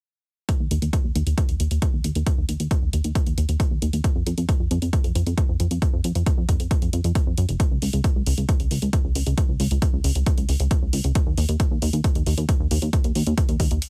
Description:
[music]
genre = uplifting trance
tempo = 135 BPM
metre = 4/4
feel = straight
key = unclear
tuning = A4 = 440 Hz
[part]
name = electronic hi-hat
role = drums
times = 0.5-13.9 s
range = none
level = -35 LUFS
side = equal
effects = overdrive, sidechain pumping on hats
[part]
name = electronic kick drum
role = drums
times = 0.5-13.7 s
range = none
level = -24 LUFS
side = equal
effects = overdrive
[part]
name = plucky analog bass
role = bass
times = 0.6-13.8 s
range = F1 to Gb2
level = -24 LUFS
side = equal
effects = sidechain pumping
[sound]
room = little or no reverb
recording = none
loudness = -22 LUFS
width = mono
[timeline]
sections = 0.5-13.9 A section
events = filter sweep on analog synth bass 0.5-13.9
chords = none

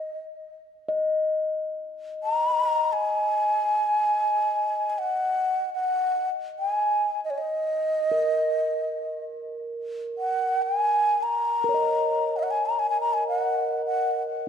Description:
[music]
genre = world meditative, free-time meditation music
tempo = free time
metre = none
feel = none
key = Eb minor pentatonic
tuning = A4 = 440 Hz
[part]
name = breathy low xiao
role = melody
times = 0.0-14.2 s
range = Db5 to Bb5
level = -23 LUFS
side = equal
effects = ping-pong delay
[part]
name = quartz singing bowl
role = texture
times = 0.9-14.5 s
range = Bb4 to Eb5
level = -30 LUFS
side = left 1 dB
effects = stereo widening
[sound]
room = wet recital hall reverb, RT60 1.4 s, studio reverb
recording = dark, warm production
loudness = -23 LUFS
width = side -8 dB against mid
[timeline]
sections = 0.0-14.5 A section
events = none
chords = none

